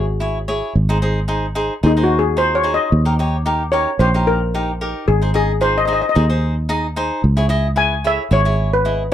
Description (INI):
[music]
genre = calypso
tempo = 111 BPM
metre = 4/4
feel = straight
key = C# minor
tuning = A4 = 440 Hz
[part]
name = steel pan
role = melody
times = 0.0-9.1 s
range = D#4 to G#5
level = -18 LUFS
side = left 2 dB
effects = none
[part]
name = cavaquinho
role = accompaniment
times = 0.0-9.1 s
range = D#4 to D#5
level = -22 LUFS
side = equal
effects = none
[part]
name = fingered electric bass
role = bass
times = 0.0-9.1 s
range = G#1 to D#2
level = -18 LUFS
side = equal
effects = none
[sound]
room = little or no reverb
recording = dry, close 1970s-style studio recording, faint mains hum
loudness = -15 LUFS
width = side -11 dB against mid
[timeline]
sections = 0.0-9.1 A section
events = steel pan solo 0.0-9.1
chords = 0.0 C#m; 0.8 G#; 2.9 D#; 5.1 G#; 7.2 C#m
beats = 0.21 | 0.75 1.29 1.83 2.38 | 2.92 3.46 4.00 4.54 | 5.08 5.62 6.16 6.70 | 7.24 7.78 8.32 8.86